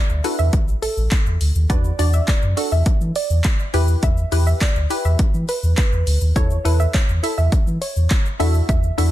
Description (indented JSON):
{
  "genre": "dance-pop",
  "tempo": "103 BPM",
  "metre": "4/4",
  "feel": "straight",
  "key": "E dorian",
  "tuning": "A4 = 440 Hz",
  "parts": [
    { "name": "soft round pluck", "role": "melody", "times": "0.0-8.9 s", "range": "A4 to E5", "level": "-28 LUFS", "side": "right 2 dB", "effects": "chorus, sidechain pumping, tape echo" },
    { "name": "wavetable chord stab", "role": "accompaniment", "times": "0.0-9.1 s", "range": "D4 to E5", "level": "-24 LUFS", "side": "left 1 dB", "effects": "sidechain pumping" },
    { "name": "sub bass with octave", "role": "bass", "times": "0.1-9.1 s", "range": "A1 to E3", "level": "-18 LUFS", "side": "equal", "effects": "sidechain pumping" },
    { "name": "punchy analog drum machine", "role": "drums", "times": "0.1-9.1 s", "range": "handclaps, hi-hat, kick drum, shaker", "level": "-20 LUFS", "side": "equal", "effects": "none" }
  ],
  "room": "little or no reverb",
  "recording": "dense, heavily limited modern master, lossy compression artefacts",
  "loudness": "-16 LUFS",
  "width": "side -14 dB against mid",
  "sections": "0.0-9.1 A section",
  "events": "none",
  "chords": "0.0 Dadd9; 1.7 Bm/E (rootless); 3.7 Em; 6.4 A/E; 8.4 Dadd9"
}